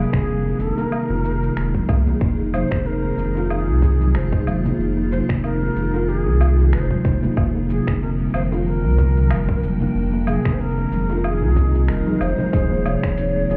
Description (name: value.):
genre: organic downtempo.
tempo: 93 BPM.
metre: 4/4.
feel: swing 56% on 16ths.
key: unclear.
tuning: A4 = 440 Hz.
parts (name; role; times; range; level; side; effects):
breathy mellow Native American-style cedar flute; melody; 0.0-13.6 s; Ab4 to Db5; -31 LUFS; equal; tape echo.
granular cloud pad; sustained chords; 0.0-13.6 s; F3 to G5; -32 LUFS; equal; built-in reverb, sidechain pumping.
buzzing kalimba; arpeggios; 0.0-13.6 s; C3 to F4; -26 LUFS; equal; tape echo.
warm sub bass; bass; 0.0-13.6 s; Eb1 to C2; -23 LUFS; equal; sidechain pumping.
dusty soul sampler-style drum kit; drums; 0.1-13.6 s; finger snaps, hi-hat, shaker, woodblock; -35 LUFS; equal; overdrive.
electronic kick drum; drums; 0.1-13.1 s; none; -24 LUFS; equal; overdrive.
congas and bongos; percussion; 0.1-12.5 s; none; -30 LUFS; equal; none.
swell and impact; sound effects; 11.5-13.6 s; none; -33 LUFS; equal; none.
tine electric piano; accompaniment; 12.5-13.6 s; F3 to Ab4; -28 LUFS; equal; sidechain pumping.
room: light reverb.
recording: heard muffled through a wall, club reverb, EQ, nothing above 10.7 kHz.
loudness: -20 LUFS.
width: mono.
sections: 0.0-12.5 A section; 12.5-13.6 B section.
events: swell 11.5-12.5; break 11.9-12.5; impact 12.5-13.6.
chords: 0.0 Ebsus4/F; 2.2 Fm7; 7.4 Gm7/F; 10.0 Ebsus4/F; 12.5 Eb7sus4.